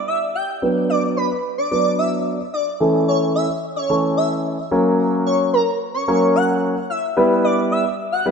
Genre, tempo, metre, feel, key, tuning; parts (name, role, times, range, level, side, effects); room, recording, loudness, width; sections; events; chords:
pop; 110 BPM; 4/4; straight; B minor; A4 = 440 Hz
airy dreamy lead; melody; 0.1-8.2 s; A#4 to G5; -21 LUFS; equal; chorus, digital delay
warm concert grand piano; accompaniment; 0.6-8.3 s; E3 to B4; -18 LUFS; equal; low-pass filter
moderate lush hall reverb, RT60 2.6 s; rough home demo mix; -17 LUFS; side -6 dB against mid
0.6-8.3 A section
build-up 0.6-8.3; filter sweep on grand piano 0.6-8.3
0.0 Em; 0.6 Bm; 2.8 A; 4.7 F#; 7.2 Em